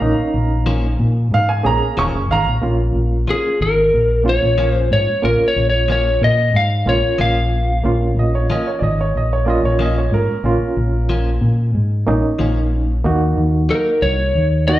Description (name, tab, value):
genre	blues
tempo	92 BPM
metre	4/4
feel	straight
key	Bb minor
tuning	A4 = 440 Hz
part	warm upright piano	second line	0.0-2.6, 8.2-11.4 s	Bb4 to Db6	-22 LUFS	right 4 dB	slapback echo
part	barky reed electric piano	accompaniment	0.0-14.8 s	Bb3 to Ab4	-22 LUFS	right 2 dB	overdrive, fast tremolo
part	fingered electric bass	bass	0.0-14.8 s	Eb1 to Bb2	-17 LUFS	equal	none
part	direct-recorded clean electric guitar	stabs	0.7-13.9 s	F3 to Eb4	-26 LUFS	left 3 dB	spring reverb
part	lightly driven lead guitar	melody	3.3-8.5, 13.7-14.8 s	Ab4 to F5	-17 LUFS	left 1 dB	slapback echo
room	light reverb, digital ambience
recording	live gig heard through the venue's PA, club reverb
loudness	-14 LUFS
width	side -14 dB against mid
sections	0.0-2.6 A section; 2.6-14.8 B section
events	upright piano solo 0.0-2.6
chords	0.0 Bbm; 13.0 Ebm